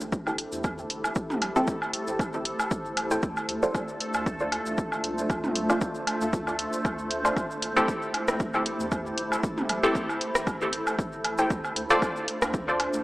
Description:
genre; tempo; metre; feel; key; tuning
dub techno; 116 BPM; 4/4; swing 55% on 16ths; A minor; A4 = 439 Hz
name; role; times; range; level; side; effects
granular cloud pad; sustained chords; 0.0-13.0 s; A3 to C5; -32 LUFS; equal; built-in reverb, sidechain pumping
filtered dub chord stab; stabs; 0.0-13.0 s; C4 to D5; -28 LUFS; equal; phaser, sidechain pumping, dub echo
pure sine sub bass; bass; 0.0-13.0 s; G1 to E2; -47 LUFS; equal; sidechain pumping
egg shaker; percussion; 0.0-13.0 s; none; -43 LUFS; left 1 dB; none
bubbling stepped-filter texture; texture; 0.0-13.0 s; A3 to A4; -37 LUFS; equal; chorus, built-in reverb, sidechain pumping
electronic kick drum; drums; 0.1-12.7 s; none; -31 LUFS; equal; overdrive
warbly dusty pluck; riff; 0.3-12.9 s; E4 to C6; -32 LUFS; equal; chorus, cassette tape, sidechain pumping, dub echo
electronic woodblock and toms; percussion; 0.3-12.9 s; none; -31 LUFS; right 1 dB; sidechain pumping on perc, sidechain pumping on toms, dub echo
deep house drum kit; drums; 0.4-12.9 s; hi-hat, rim click; -29 LUFS; equal; overdrive
room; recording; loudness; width
moderate lush hall reverb, RT60 1.8 s; small speaker sound; -25 LUFS; side -19 dB against mid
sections
0.0-13.0 A section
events
none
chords
0.0 Am7; 3.2 Dm7; 7.4 Am7; 11.5 Dm7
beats
0.13 0.64 | 1.16 1.68 2.19 2.71 | 3.23 3.75 4.26 4.78 | 5.30 5.82 6.33 6.85 | 7.37 7.88 8.40 8.92 | 9.44 9.95 10.47 10.99 | 11.51 12.02 12.54

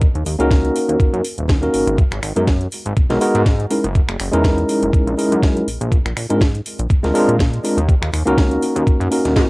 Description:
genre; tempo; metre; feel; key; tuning
nu-disco, nu disco; 122 BPM; 4/4; swing 55% on 16ths; unclear; A4 = 439 Hz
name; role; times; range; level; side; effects
chorused synth bass; bass; 0.0-9.5 s; D#1 to A#2; -20 LUFS; equal; none
electronic kick drum; drums; 0.0-9.5 s; none; -15 LUFS; equal; cassette tape
house drum kit; drums; 0.0-9.5 s; finger snaps, hi-hat, snare drum, toms; -25 LUFS; equal; cassette tape
tine electric piano; accompaniment; 0.4-9.5 s; G#3 to A#4; -17 LUFS; equal; medium tremolo, sidechain pumping, cassette tape, tape echo
room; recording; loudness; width
light reverb; home recording on cassette, lossy compression artefacts; -14 LUFS; side -24 dB against mid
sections
0.0-9.5 A section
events
none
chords
0.0 D#m7; 2.0 G#m7; 3.7 F#13; 5.7 A#7; 7.9 D#m7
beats
| 0.02 0.51 1.00 1.49 | 1.99 2.48 2.97 3.46 | 3.95 4.44 4.94 5.43 | 5.92 6.41 6.90 7.39 | 7.89 8.38 8.87 9.36

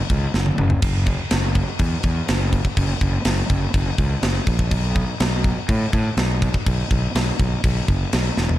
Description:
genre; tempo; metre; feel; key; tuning
heavy metal; 123 BPM; 4/4; straight; F# minor; A4 = 440 Hz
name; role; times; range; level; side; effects
fuzz fingered electric bass; bass; 0.1-8.5 s; E1 to A2; -21 LUFS; equal; overdrive
tight metal drum kit; drums; 0.1-8.6 s; crash cymbal, kick drum, snare drum, toms; -21 LUFS; equal; none
room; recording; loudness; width
little or no reverb; dark, warm production; -18 LUFS; side -14 dB against mid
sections
0.0-8.6 A section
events
drum fill 0.3-0.8, 8.4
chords
none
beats
0.34 | 0.83 1.31 1.80 2.29 | 2.77 3.26 3.75 4.23 | 4.72 5.20 5.69 6.18 | 6.66 7.15 7.64 8.12

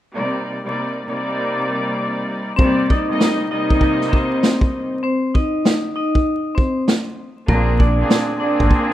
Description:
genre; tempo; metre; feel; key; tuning
hip hop, boom-bap hip-hop; 98 BPM; 4/4; swing 62% on 16ths; C minor; A4 = 440 Hz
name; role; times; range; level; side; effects
rich chamber string section; accompaniment; 0.1-8.9 s; Bb2 to Eb5; -21 LUFS; equal; cassette tape, high-pass filter, low-pass filter
vibraphone with hard mallets; melody; 2.6-8.9 s; Bb3 to Eb5; -20 LUFS; left 1 dB; high-pass filter, low-pass filter
vintage drum kit; drums; 2.6-8.9 s; kick drum, snare drum; -17 LUFS; equal; none
deep dub fingered electric bass; bass; 7.5-8.7 s; Ab1 to Bb1; -17 LUFS; equal; none
room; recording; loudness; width
small room ambience; rough home demo mix, vinyl crackle; -16 LUFS; side -13 dB against mid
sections
0.1-2.6 A section; 2.6-8.9 B section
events
hi-hats muted 2.6-8.9; break 5.0-7.5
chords
0.1 Cm7; 7.5 Bb7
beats
| 0.14 0.75 1.36 1.98 | 2.59 3.20 3.81 4.42 | 5.04 5.65 6.26 6.87 | 7.49 8.10 8.71

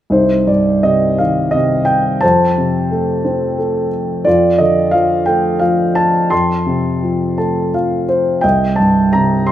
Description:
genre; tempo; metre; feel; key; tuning
classical, lyrical solo piano; 86 BPM; 3/4; uneven beats, rubato; C dorian; A4 = 440 Hz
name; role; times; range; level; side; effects
dark grand piano; solo; 0.1-9.5 s; C2 to C6; -12 LUFS; equal; none
room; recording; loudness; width
light reverb; minimal, uncompressed stereo recording; -12 LUFS; side -12 dB against mid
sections
0.1-9.5 A section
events
grand piano fill 7.0-8.4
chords
0.1 Cm; 2.2 F; 4.3 Dm/F; 6.3 F; 8.4 Cm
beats
| 0.10 0.83 1.54 | 2.23 2.91 3.59 | 4.26 4.94 5.62 | 6.32 7.03 7.73 | 8.44 9.14

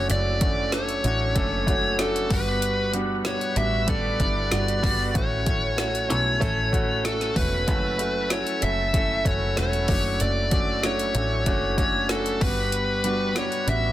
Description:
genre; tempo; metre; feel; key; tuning
piano-driven pop; 95 BPM; 4/4; straight; unclear; A4 = 440 Hz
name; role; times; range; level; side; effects
bluesy overdriven lead guitar; melody; 0.0-13.9 s; A4 to E5; -26 LUFS; equal; distortion
clear baby grand piano; accompaniment; 0.0-13.9 s; G2 to A4; -28 LUFS; equal; none
overdriven tonewheel organ; sustained chords; 0.0-13.9 s; F#3 to B4; -35 LUFS; equal; chorus vibrato, slow rotary speaker
overdriven picked electric bass; bass; 0.0-13.9 s; E1 to B1; -28 LUFS; equal; none
deep house drum kit; drums; 0.1-13.8 s; hi-hat, kick drum, snare drum; -26 LUFS; equal; none
room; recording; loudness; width
light reverb; dense, heavily limited modern master, faint mains hum; -21 LUFS; side -14 dB against mid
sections
0.0-13.9 A section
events
none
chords
0.0 Dmaj7/F#; 2.3 Gmaj7; 5.1 A6; 7.7 F#m7; 9.9 Dmaj7/F#; 12.4 Gmaj7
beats
| 0.10 0.73 1.36 1.99 | 2.62 3.25 3.89 4.52 | 5.15 5.78 6.41 7.04 | 7.68 8.31 8.94 9.57 | 10.21 10.84 11.47 12.10 | 12.73 13.36

